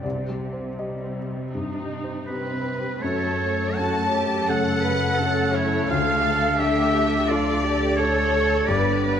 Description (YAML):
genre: cinematic, emotional film score for orchestra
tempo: 79-87 BPM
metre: 4/4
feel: rubato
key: F# phrygian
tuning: A4 = 436 Hz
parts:
  - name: warm baby grand piano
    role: accompaniment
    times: 0.0-9.2 s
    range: C2 to Eb5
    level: -28 LUFS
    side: left 2 dB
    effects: none
  - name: warm studio viola section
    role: accompaniment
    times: 0.0-9.2 s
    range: G3 to A4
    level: -31 LUFS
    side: right 2 dB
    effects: none
  - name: concert harp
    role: arpeggios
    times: 0.0-9.2 s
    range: F#2 to A5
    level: -30 LUFS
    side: left 5 dB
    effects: none
  - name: warm studio cello section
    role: bass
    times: 0.0-9.2 s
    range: C3 to B4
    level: -28 LUFS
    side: right 4 dB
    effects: none
  - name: warm studio violin section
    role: melody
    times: 2.3-9.2 s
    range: B4 to A5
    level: -32 LUFS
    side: left 5 dB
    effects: none
  - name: clear oboe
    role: second line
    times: 2.3-9.1 s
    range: B4 to A5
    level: -26 LUFS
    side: right 2 dB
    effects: none
  - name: warm studio violin section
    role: second line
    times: 2.3-9.2 s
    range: B4 to A5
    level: -29 LUFS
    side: left 4 dB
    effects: none
  - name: dark studio double bass section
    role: bass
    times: 3.0-9.2 s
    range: G1 to F#2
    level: -28 LUFS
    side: right 3 dB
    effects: none
room: wet concert hall reverb, RT60 2.3 s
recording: none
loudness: -20 LUFS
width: side -8 dB against mid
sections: 0.0-3.0 A section; 3.0-9.2 A section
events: none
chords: 0.0 Cm; 3.0 F#m; 5.9 Dm; 8.7 G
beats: | 0.04 0.78 1.53 2.27 | 3.01 3.76 4.48 5.18 | 5.88 6.58 7.28 7.97 | 8.67